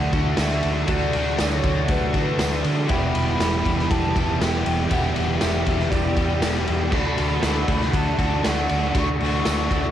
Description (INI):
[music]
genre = rock, shoegaze and dream pop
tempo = 119 BPM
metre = 4/4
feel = straight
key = D major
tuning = A4 = 441 Hz
[part]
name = pure sine lead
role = melody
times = 0.0-9.9 s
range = B4 to C#6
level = -29 LUFS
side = left 1 dB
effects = chorus, cassette tape, analog delay
[part]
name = soft string machine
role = sustained chords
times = 0.2-9.9 s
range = D4 to D6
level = -38 LUFS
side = left 1 dB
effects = none
[part]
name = crunchy overdriven guitar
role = riff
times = 0.0-9.9 s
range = E2 to G4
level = -28 LUFS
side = left 9 dB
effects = lush chorus, cassette tape
[part]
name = overdriven electric guitar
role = riff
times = 0.0-9.9 s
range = D3 to G4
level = -29 LUFS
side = equal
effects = phaser, cassette tape
[part]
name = overdriven semi-hollow guitar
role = riff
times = 0.0-9.9 s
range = E2 to G4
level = -27 LUFS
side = right 8 dB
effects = reverse reverb, cassette tape
[part]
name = vintage muted fingered electric bass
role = bass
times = 0.0-9.9 s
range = E1 to D3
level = -26 LUFS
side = equal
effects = none
[part]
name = raw garage drum kit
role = drums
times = 0.1-9.8 s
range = crash cymbal, kick drum, ride cymbal, snare drum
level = -24 LUFS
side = equal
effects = cassette tape
[part]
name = tambourine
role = percussion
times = 0.4-9.6 s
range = none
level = -40 LUFS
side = right 12 dB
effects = none
[sound]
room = small room ambience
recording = home recording on cassette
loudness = -19 LUFS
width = side -11 dB against mid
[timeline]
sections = 0.0-9.9 A section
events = none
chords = 0.0 D6; 2.9 Em7; 6.9 D6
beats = 0.38 | 0.89 1.39 1.89 2.40 | 2.90 3.40 3.91 4.41 | 4.91 5.42 5.92 6.42 | 6.93 7.43 7.94 8.44 | 8.94 9.45